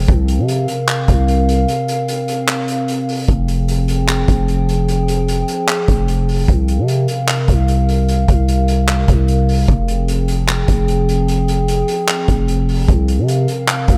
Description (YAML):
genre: hip hop, trap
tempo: 150 BPM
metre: 4/4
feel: half-time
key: F minor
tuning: A4 = 440 Hz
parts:
  - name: warbly tape-like pad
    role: sustained chords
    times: 0.0-14.0 s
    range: C3 to G5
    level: -22 LUFS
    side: equal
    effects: chorus, built-in reverb
  - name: growling 808-style bass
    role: bass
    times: 0.0-14.0 s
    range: F1 to C3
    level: -18 LUFS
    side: equal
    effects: none
  - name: vintage drum kit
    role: drums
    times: 0.1-14.0 s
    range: handclaps, hi-hat, kick drum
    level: -21 LUFS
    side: equal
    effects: none
room: moderate lush hall reverb, RT60 1.6 s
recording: dreamy mix soaked in reverb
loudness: -16 LUFS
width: mono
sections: 0.0-14.0 A section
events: break 1.7-3.3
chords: 0.1 C7sus4; 3.3 Fmadd9; 6.5 C7sus4; 9.7 Fmadd9; 12.9 C7sus4